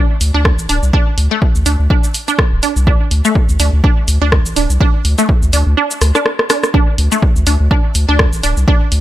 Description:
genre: minimal techno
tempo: 124 BPM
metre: 4/4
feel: swing 56% on 16ths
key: unclear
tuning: A4 = 438 Hz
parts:
  - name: resonant blip pluck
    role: riff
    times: 0.0-8.7 s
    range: A3 to D4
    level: -18 LUFS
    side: right 1 dB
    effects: analog chorus, sidechain pumping, tape echo
  - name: round analog bass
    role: bass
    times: 0.2-9.0 s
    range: D1 to D2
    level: -13 LUFS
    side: equal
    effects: sidechain pumping
  - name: punchy analog drum machine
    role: drums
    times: 0.2-9.0 s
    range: hi-hat, rim click, shaker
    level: -18 LUFS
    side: equal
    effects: none
  - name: electronic kick drum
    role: drums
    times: 0.5-8.8 s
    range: none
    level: -13 LUFS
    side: equal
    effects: none
room: little or no reverb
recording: none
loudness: -11 LUFS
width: side -14 dB against mid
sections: 0.0-6.7 A section; 6.7-9.0 B section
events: kick drops out 5.8-6.7; drum fill 6.0-6.7; drop 6.7-9.0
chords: 0.0 D5

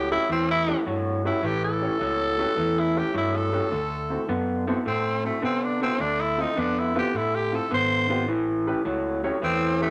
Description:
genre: blues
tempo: 105 BPM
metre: 4/4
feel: swing 68% on 8ths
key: unclear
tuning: A4 = 440 Hz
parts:
  - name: growling tenor saxophone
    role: melody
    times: 0.0-9.9 s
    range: A3 to C5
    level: -28 LUFS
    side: equal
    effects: none
  - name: electric guitar through a small old amp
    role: riff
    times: 0.0-9.9 s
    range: A2 to B3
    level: -29 LUFS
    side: equal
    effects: none
  - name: fingered electric bass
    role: bass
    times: 0.0-9.9 s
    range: G#1 to C3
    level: -34 LUFS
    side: equal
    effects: none
  - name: warm upright piano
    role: accompaniment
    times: 0.1-9.9 s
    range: C4 to C#5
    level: -35 LUFS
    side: equal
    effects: none
room: moderate large studio reverb, RT60 0.9 s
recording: none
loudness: -25 LUFS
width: mono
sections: 0.0-9.9 A section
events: tenor saxophone solo 0.0-9.9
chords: 0.0 A7; 3.7 D7; 6.0 Dm7; 8.3 A7

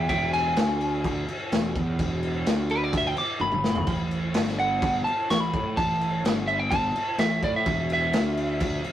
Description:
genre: blues rock power trio and southern rock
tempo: 127 BPM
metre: 4/4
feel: straight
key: unclear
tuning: A4 = 440 Hz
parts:
  - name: lightly driven lead guitar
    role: melody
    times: 0.0-8.8 s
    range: B4 to D6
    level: -26 LUFS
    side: equal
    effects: none
  - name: fuzz fingered electric bass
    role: bass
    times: 0.0-8.9 s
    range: E1 to A2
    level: -28 LUFS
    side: right 1 dB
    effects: overdrive
  - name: raw garage drum kit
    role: drums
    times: 0.1-8.9 s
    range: crash cymbal, kick drum, snare drum, toms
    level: -27 LUFS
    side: left 1 dB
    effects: none
room: moderate studio reverb, RT60 0.6 s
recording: rough rehearsal-room recording, warm saturation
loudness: -23 LUFS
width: side -11 dB against mid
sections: 0.0-8.9 A section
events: lead electric guitar solo 0.0-8.9; drum fill 3.4-3.9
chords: 0.0 E7; 3.9 Gsus2; 7.7 E5

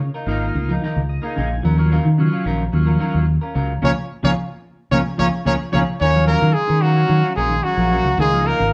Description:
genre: afrobeat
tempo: 110 BPM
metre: 4/4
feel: straight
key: Eb minor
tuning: A4 = 440 Hz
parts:
  - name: clean electric guitar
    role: arpeggios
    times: 0.0-8.7 s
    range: Bb2 to Gb3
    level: -26 LUFS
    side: equal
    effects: spring reverb
  - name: fingered electric bass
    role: bass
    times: 0.0-8.7 s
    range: Ab1 to Eb3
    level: -21 LUFS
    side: equal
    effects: none
  - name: semi-hollow electric guitar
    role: stabs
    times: 0.1-8.6 s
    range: Gb3 to Bb4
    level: -31 LUFS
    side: equal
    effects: none
  - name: combo organ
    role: accompaniment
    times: 0.3-8.7 s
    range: Gb3 to Ab5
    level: -30 LUFS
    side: equal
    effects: none
  - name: brilliant trumpet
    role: melody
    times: 3.8-8.7 s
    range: Gb4 to Db5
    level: -22 LUFS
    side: equal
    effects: none
  - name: bright trombone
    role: second line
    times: 3.8-8.7 s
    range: Gb3 to Db4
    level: -33 LUFS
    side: equal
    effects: none
  - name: melodica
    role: second line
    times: 3.8-8.7 s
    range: Gb3 to F5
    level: -30 LUFS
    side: equal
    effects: none
room: wet studio reverb, RT60 0.8 s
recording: band playing live in one room, cassette tape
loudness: -18 LUFS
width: mono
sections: 0.0-6.0 A section; 6.0-8.7 B section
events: transistor combo organ fill 0.8-1.6; band accent 3.8-6.0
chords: 0.0 Db69; 1.6 Ebm9; 3.8 Db6; 6.0 Ebm9; 8.2 Db69

